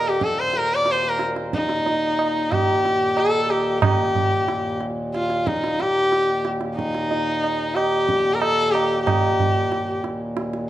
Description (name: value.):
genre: indian classical, Hindustani.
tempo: 92 BPM.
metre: 4/4.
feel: straight.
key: Eb raga yaman.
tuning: A4 = 440 Hz.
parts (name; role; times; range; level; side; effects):
rich sarangi; melody; 0.0-10.0 s; Eb4 to D5; -20 LUFS; left 1 dB; none.
hand-pumped harmonium; drone; 0.0-10.7 s; Eb2 to Bb2; -29 LUFS; equal; none.
tabla; percussion; 0.2-10.7 s; none; -25 LUFS; right 4 dB; none.
room: moderate recital hall reverb, RT60 1.7 s.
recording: none.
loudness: -19 LUFS.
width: side -13 dB against mid.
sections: 0.0-10.7 A section.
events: none.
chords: none.